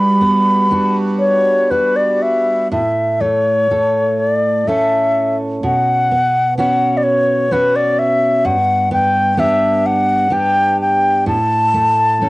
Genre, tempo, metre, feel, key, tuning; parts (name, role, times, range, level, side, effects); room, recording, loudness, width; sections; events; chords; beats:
celtic folk, Celtic slow air; 63 BPM; 3/4; uneven beats, rubato; A4 = 443 Hz
bright baroque flute; melody; 0.0-12.3 s; B4 to B5; -14 LUFS; left 1 dB; cassette tape
fingerpicked steel-string acoustic guitar; accompaniment; 0.0-12.3 s; G2 to A4; -18 LUFS; right 2 dB; cassette tape
hand-pumped harmonium; sustained chords; 0.0-2.7 s; G3 to B4; -24 LUFS; equal; cassette tape
moderate studio reverb, RT60 0.5 s; home recording on cassette; -12 LUFS; side -20 dB against mid
0.0-2.7 A section; 2.7-12.3 B section
0.0 Gmaj7; 2.7 A; 5.6 Bsus2; 8.5 G; 11.3 N.C.
0.70 1.71 | 2.71 3.70 4.67 | 5.63 6.57 7.51 | 8.46 9.38 10.31 | 11.27 12.23